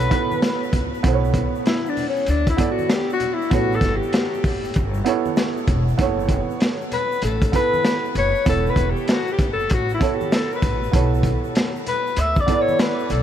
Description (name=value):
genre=hip hop, jazz-hop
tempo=97 BPM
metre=4/4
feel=swing 64% on 16ths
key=B minor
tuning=A4 = 440 Hz
part: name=breathy alto saxophone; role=melody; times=0.0-13.2 s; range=C#4 to E5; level=-23 LUFS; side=left 4 dB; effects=analog delay
part: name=dark upright piano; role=accompaniment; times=0.0-13.2 s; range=B3 to D5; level=-25 LUFS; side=right 7 dB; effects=wide subtle chorus
part: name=upright bass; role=bass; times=0.0-13.2 s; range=E1 to D2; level=-24 LUFS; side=equal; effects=none
part: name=crunchy breakbeat drum kit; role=drums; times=0.0-13.2 s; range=hi-hat, kick drum, snare drum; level=-22 LUFS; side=equal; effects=vintage 12-bit sampler grit
part: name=tube shaker and congas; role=percussion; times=0.0-13.2 s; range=none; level=-36 LUFS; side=left 4 dB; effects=none
room=moderate huge ambient reverb, RT60 7.1 s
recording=dreamy mix soaked in reverb, vinyl crackle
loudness=-18 LUFS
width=side -10 dB against mid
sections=0.0-1.0 A section; 1.0-13.2 B section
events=alto saxophone solo 1.0-13.2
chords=0.0 Bsus2; 1.0 Bm9; 3.5 A9; 6.0 F#m7; 8.5 Esus4; 10.9 Bm9